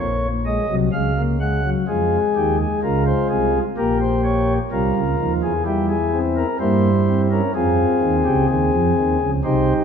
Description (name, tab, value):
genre	classical, baroque-style 4-part fugue for pipe organ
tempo	63 BPM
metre	4/4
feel	straight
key	F minor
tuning	A4 = 440 Hz
part	pipe organ, flutes	solo	0.0-9.8 s	Bb1 to Gb5	-17 LUFS	equal	none
room	wet church reverb, RT60 2.4 s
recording	minimal, uncompressed stereo recording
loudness	-17 LUFS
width	side -7 dB against mid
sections	0.0-1.9 A section; 1.9-9.8 B section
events	none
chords	0.0 Bbm; 1.9 Fm; 3.8 Gm7b5/Bb; 5.7 Edim7; 7.5 Fm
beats	0.92 | 1.88 2.83 3.77 4.72 | 5.66 6.60 7.55 8.50 | 9.44